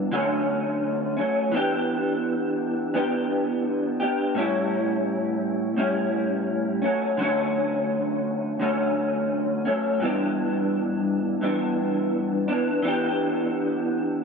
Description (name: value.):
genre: indie pop.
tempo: 85 BPM.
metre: 4/4.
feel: straight.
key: E dorian.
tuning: A4 = 441 Hz.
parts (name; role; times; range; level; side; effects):
electric guitar through a small old amp; solo; 0.0-14.2 s; G2 to G4; -22 LUFS; equal; ensemble chorus, vibrato effect.
room: moderate spring reverb, RT60 1.9 s, digital ambience.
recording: dark, warm production.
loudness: -22 LUFS.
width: side -5 dB against mid.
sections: 0.0-1.5 A section; 1.5-14.2 B section.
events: none.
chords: 0.1 Dmaj7; 1.5 Em7; 4.4 A7; 6.8 Dmaj7; 10.0 G6; 12.8 Em7.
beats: 0.12 0.83 | 1.54 2.24 2.95 3.66 | 4.36 5.07 5.78 6.48 | 7.19 7.89 8.60 9.31 | 10.01 10.72 11.43 12.13 | 12.84 13.55.